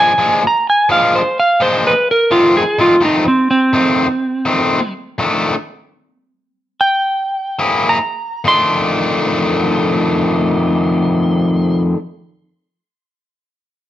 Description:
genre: blues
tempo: 68-85 BPM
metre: 4/4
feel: swing 67% on 8ths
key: F mixolydian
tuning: A4 = 439 Hz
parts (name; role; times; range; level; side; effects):
- clean lap steel guitar; melody; 0.0-11.8 s; C4 to C6; -14 LUFS; right 1 dB; plate reverb
- biting overdriven guitar; riff; 0.0-12.0 s; F2 to Ab4; -15 LUFS; left 2 dB; none
room: moderate studio reverb, RT60 0.8 s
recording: none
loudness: -12 LUFS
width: side -12 dB against mid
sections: 0.0-8.5 A section; 8.5-12.0 B section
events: slowing down 2.3-8.5; stop 5.2-7.6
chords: 0.0 Bb7; 2.3 F7; 5.2 F13; 7.6 Gb9; 8.5 F6

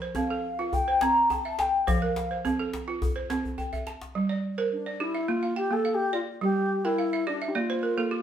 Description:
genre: west african traditional, West African string and xylophone music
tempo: 106 BPM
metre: 4/4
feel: straight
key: G dorian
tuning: A4 = 439 Hz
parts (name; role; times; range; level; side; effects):
- balafon; arpeggios; 0.0-8.2 s; F3 to A5; -29 LUFS; right 3 dB; none
- djembe; percussion; 0.1-4.1 s; none; -32 LUFS; left 2 dB; none
- mellow hollow baroque flute; melody; 0.2-8.2 s; D4 to Bb5; -26 LUFS; left 2 dB; none
room: wet large studio reverb, RT60 0.8 s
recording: band playing live in one room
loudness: -25 LUFS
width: side -9 dB against mid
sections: 0.0-4.1 A section; 4.1-8.2 B section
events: drum fill 3.4-4.1; balafon fill 6.8-8.2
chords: 0.0 F; 0.7 C; 1.9 F; 3.0 C; 4.1 Gm; 5.3 Bb; 6.4 Gm; 7.5 Bb

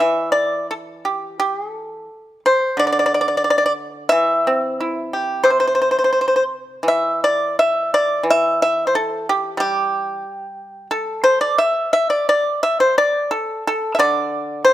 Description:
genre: chinese traditional, Chinese solo plucked strings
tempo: 84-92 BPM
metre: 2/4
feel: rubato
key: unclear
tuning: A4 = 440 Hz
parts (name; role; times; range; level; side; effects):
- pipa; solo; 0.0-14.7 s; C3 to E5; -16 LUFS; equal; none
room: light reverb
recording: close, detailed microphones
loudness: -16 LUFS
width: side -13 dB against mid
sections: 0.0-1.4 A section; 1.4-12.3 B section; 12.3-14.7 A section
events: none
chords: none

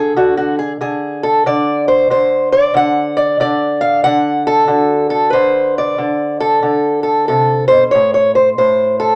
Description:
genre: acoustic country blues, solo or duo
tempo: 93 BPM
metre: 4/4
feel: swing 64% on 8ths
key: D mixolydian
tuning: A4 = 440 Hz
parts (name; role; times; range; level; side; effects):
- fingerpicked acoustic archtop guitar; solo; 0.0-9.2 s; A2 to F#5; -14 LUFS; equal; none
room: moderate studio ambience, RT60 0.5 s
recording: none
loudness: -14 LUFS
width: mono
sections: 0.0-9.2 A section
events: none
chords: 0.0 D7; 7.9 N.C.

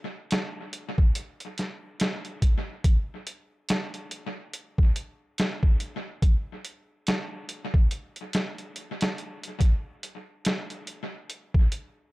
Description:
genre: trip hop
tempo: 71 BPM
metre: 4/4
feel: swing 59% on 16ths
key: none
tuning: none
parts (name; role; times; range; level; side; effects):
- boom bap sampler-style drum kit; drums; 0.3-12.0 s; hi-hat, kick drum, snare drum; -24 LUFS; equal; studio reverb, analog delay
room: little or no reverb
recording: echo-heavy mix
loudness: -25 LUFS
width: side -21 dB against mid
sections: 0.0-2.8 A section; 2.8-12.1 B section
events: none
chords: none

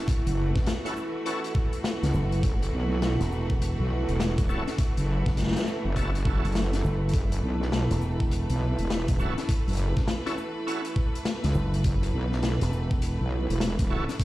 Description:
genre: glitch hop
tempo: 102 BPM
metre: 4/4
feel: swing 62% on 16ths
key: F# minor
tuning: A4 = 441 Hz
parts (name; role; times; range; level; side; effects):
- bright symphonic string section; sustained chords; 0.0-14.2 s; E3 to B4; -36 LUFS; left 1 dB; sidechain pumping
- deep dark ambient pad; texture; 0.0-14.2 s; E4 to B4; -35 LUFS; right 3 dB; chorus, built-in reverb, sidechain pumping
- electronic kick drum; drums; 0.1-14.2 s; none; -26 LUFS; equal; none
- open jazz drum kit; drums; 0.1-14.2 s; hi-hat, shaker, snare drum; -32 LUFS; left 2 dB; none
- wobble bass; bass; 0.3-14.1 s; E1 to C#2; -26 LUFS; equal; chorus, tube saturation
- bright tonewheel organ; stabs; 0.9-14.0 s; C#4 to A4; -35 LUFS; right 1 dB; overdrive, chorus vibrato, slow rotary speaker, vintage 12-bit sampler grit, sidechain pumping, dub echo
- slap bass with an envelope filter; bass; 2.1-13.2 s; E1 to F#1; -26 LUFS; equal; none
room: small room ambience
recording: played on a big sound system in a bare room, stone room reverb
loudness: -24 LUFS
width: side -16 dB against mid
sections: 0.0-14.2 A section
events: none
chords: 0.0 F#m7

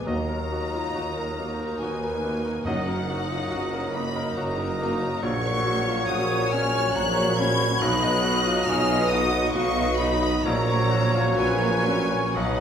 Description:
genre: classical, romantic movement for piano and orchestra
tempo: 69 BPM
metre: 3/4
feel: rubato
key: Eb minor, F# major from 5.2 s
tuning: A4 = 440 Hz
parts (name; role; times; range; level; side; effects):
- clear grand piano; melody; 0.0-12.6 s; A#1 to D#5; -28 LUFS; left 2 dB; none
- clear studio violin section; melody; 0.0-12.6 s; Gb5 to G#6; -32 LUFS; left 3 dB; none
- clear oboe; second line; 0.0-12.6 s; C#5 to D#5; -34 LUFS; right 1 dB; none
- mellow hollow concert flute; second line; 0.0-12.6 s; Bb4 to B5; -33 LUFS; left 1 dB; none
- rich studio violin section; second line; 0.0-12.6 s; Gb5 to G#6; -33 LUFS; left 2 dB; none
- mellow bassoon; accompaniment; 0.0-12.6 s; Gb3 to F#3; -34 LUFS; left 1 dB; none
- rich studio viola section; accompaniment; 0.0-12.6 s; C#4 to B4; -35 LUFS; right 3 dB; none
- mellow French horn section; sustained chords; 0.1-12.6 s; Bb3 to Gb4; -36 LUFS; left 3 dB; none
- mellow trombone section; sustained chords; 0.1-12.6 s; A#2 to Gb3; -35 LUFS; right 2 dB; none
- clear trumpet; stabs; 0.1-12.6 s; C#5 to Eb5; -32 LUFS; right 1 dB; none
- rich studio cello section; bass; 0.1-12.6 s; Eb2 to B2; -33 LUFS; right 3 dB; none
- rich studio double bass section; bass; 0.1-12.6 s; Gb1 to Eb2; -31 LUFS; right 2 dB; none
- warm tuba; bass; 0.1-12.6 s; Gb1 to Eb2; -32 LUFS; right 2 dB; none
- timpani; percussion; 2.6-3.9 s; Gb2; -37 LUFS; right 1 dB; none
room: wet recital hall reverb, RT60 1.5 s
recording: recorded in a church or concert hall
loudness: -22 LUFS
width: side -8 dB against mid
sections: 0.0-12.6 A section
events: none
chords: 0.1 Ebm; 2.6 Ebm/Gb; 5.2 F#/A#; 7.8 B; 10.4 F#/A#

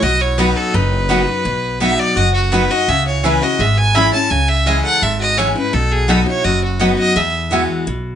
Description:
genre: bluegrass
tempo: 168 BPM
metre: 4/4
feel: straight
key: unclear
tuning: A4 = 439 Hz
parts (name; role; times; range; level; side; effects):
- clear fiddle; melody; 0.0-7.5 s; F#4 to B5; -17 LUFS; right 1 dB; none
- lap resonator guitar; second line; 0.0-7.5 s; A3 to E5; -24 LUFS; left 3 dB; none
- picked steel-string acoustic guitar; accompaniment; 0.0-8.2 s; E2 to F#4; -19 LUFS; left 3 dB; none
- upright bass; bass; 0.0-8.2 s; F#1 to E2; -19 LUFS; right 1 dB; none
- mandolin; stabs; 0.4-7.6 s; B3 to B5; -19 LUFS; right 3 dB; slapback echo
room: light reverb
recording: nothing above 10.7 kHz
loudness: -13 LUFS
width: side -9 dB against mid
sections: 0.0-8.2 A section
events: none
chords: 0.0 B; 2.9 C#m; 5.7 B; 7.2 Eadd9

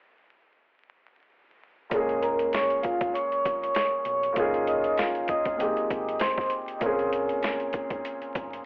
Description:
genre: hip hop, boom-bap hip-hop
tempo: 98 BPM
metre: 4/4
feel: swing 59% on 16ths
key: Bb dorian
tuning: A4 = 441 Hz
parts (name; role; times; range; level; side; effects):
- dark upright piano; accompaniment; 1.9-8.7 s; Bb2 to Ab4; -28 LUFS; equal; cassette tape, high-pass filter, low-pass filter
- deep dub fingered electric bass; bass; 1.9-8.6 s; F1 to Cb2; -43 LUFS; equal; none
- boom bap sampler-style drum kit; drums; 1.9-8.6 s; hi-hat, kick drum, snare drum; -32 LUFS; equal; overdrive
- vibraphone with soft mallets; melody; 2.2-6.5 s; F4 to Eb6; -26 LUFS; equal; high-pass filter, low-pass filter, digital delay
room: light reverb, studio reverb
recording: worn, warbling old tape, cassette tape, vinyl crackle, warbly pitch drift, telephone sound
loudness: -24 LUFS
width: side -31 dB against mid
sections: 1.9-8.7 A section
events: none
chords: 1.9 Bbm7; 4.4 Eb9sus4/Bb; 5.6 Abmaj9; 6.8 Bbm9

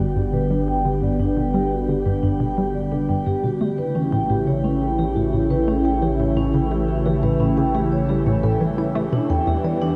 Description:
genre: ambient, sequencer-driven space music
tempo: 87 BPM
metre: 4/4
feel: straight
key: unclear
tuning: A4 = 440 Hz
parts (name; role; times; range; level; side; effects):
- phased analog pad; sustained chords; 0.0-10.0 s; C#3 to E4; -25 LUFS; equal; phaser, chorus, shimmer reverb
- vibraphone with soft mallets; arpeggios; 0.0-9.9 s; G3 to G5; -26 LUFS; equal; low-pass filter, analog delay, shimmer reverb
- hollow square pluck; riff; 0.0-9.9 s; E2 to E4; -26 LUFS; equal; chorus, analog delay
- round analog bass; bass; 0.0-10.0 s; G1 to E2; -31 LUFS; equal; none
room: moderate huge ambient reverb, RT60 7.8 s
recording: in a vast, echoing space, nothing above 10.5 kHz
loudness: -21 LUFS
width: mono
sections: 0.0-10.0 A section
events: filter sweep on synth arpeggio sound 0.0-10.0; filter sweep on vibraphone 0.0-10.0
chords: 0.0 G; 3.6 A; 9.1 Em

